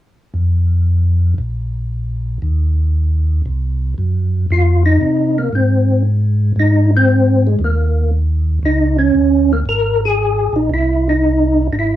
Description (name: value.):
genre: jazz.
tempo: 116 BPM.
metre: 4/4.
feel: swing 67% on 8ths.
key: F minor from 4.5 s.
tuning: A4 = 439 Hz.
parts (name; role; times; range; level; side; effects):
mellow tonewheel organ; bass; 0.3-12.0 s; Ab1 to C3; -15 LUFS; equal; slow rotary speaker.
percussive tonewheel organ; melody; 4.5-12.0 s; Ab3 to Bb4; -14 LUFS; equal; chorus vibrato, fast rotary speaker.
room: light reverb.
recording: worn, warbling old tape, cassette tape, warbly pitch drift.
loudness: -13 LUFS.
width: side -12 dB against mid.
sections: 0.3-4.5 A section; 4.5-12.0 B section.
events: none.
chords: 0.3 N.C.; 4.5 Fm7; 6.6 Abadd9; 8.6 Db5; 10.7 Caug.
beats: | 0.35 0.87 1.39 1.90 | 2.42 2.94 3.46 3.98 | 4.50 5.02 5.53 6.05 | 6.57 7.09 7.61 8.12 | 8.64 9.16 9.68 10.19 | 10.71 11.23 11.74.